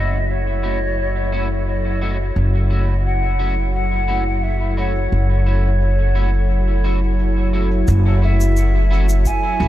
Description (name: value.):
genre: ambient dub.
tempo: 87 BPM.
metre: 4/4.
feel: straight.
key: F# minor.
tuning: A4 = 440 Hz.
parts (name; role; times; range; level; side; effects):
mellow hollow silver concert flute; melody; 0.0-9.7 s; C#5 to G#5; -25 LUFS; left 1 dB; dub echo.
soft additive organ-like pad; sustained chords; 0.0-9.7 s; F#3 to F#5; -25 LUFS; right 1 dB; ensemble chorus, built-in reverb.
electric guitar at the edge of break-up; stabs; 0.0-9.7 s; A3 to F#4; -29 LUFS; right 1 dB; analog chorus, low-pass filter, dub echo.
upright bass; bass; 0.0-9.7 s; F#1 to A1; -17 LUFS; equal; tube saturation.
shaker; drums; 0.1-9.4 s; none; -35 LUFS; left 3 dB; low-pass filter on perc, low-pass filter on snare, low-pass filter on room, dub echo.
electronic kick drum; drums; 7.9-9.4 s; none; -25 LUFS; equal; none.
room: light reverb, studio ambience.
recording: none.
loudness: -15 LUFS.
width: side -14 dB against mid.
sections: 0.0-7.9 A section; 7.9-9.7 B section.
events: none.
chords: 0.0 F#m7.